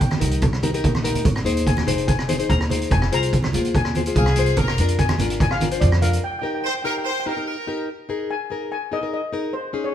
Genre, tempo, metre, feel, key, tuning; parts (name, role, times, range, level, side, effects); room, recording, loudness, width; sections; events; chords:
calypso; 145 BPM; 4/4; straight; Ab major; A4 = 440 Hz
steel pan; melody; 0.0-9.9 s; C5 to Bb5; -28 LUFS; left 2 dB
nylon-string guitar; accompaniment; 0.0-9.9 s; Db4 to C5; -26 LUFS; left 4 dB
upright bass; bass; 0.0-6.2 s; F1 to F2; -22 LUFS; equal
street-band drum kit; drums; 0.0-6.2 s; hi-hat, kick drum, rim click; -22 LUFS; right 1 dB
congas; percussion; 0.1-6.1 s; -28 LUFS; right 3 dB
clear horn section; second line; 4.2-7.9 s; Ab4 to C5; -25 LUFS; left 1 dB
moderate stone room reverb, RT60 1.4 s; band playing live in one room; -19 LUFS; side -10 dB against mid
0.0-7.9 A section; 7.9-9.9 A section
drum fill 0.8-1.3; break 6.2-7.9
0.0 Eb; 1.3 Fm; 4.6 Bb7/F; 6.2 Eb; 7.9 Absus2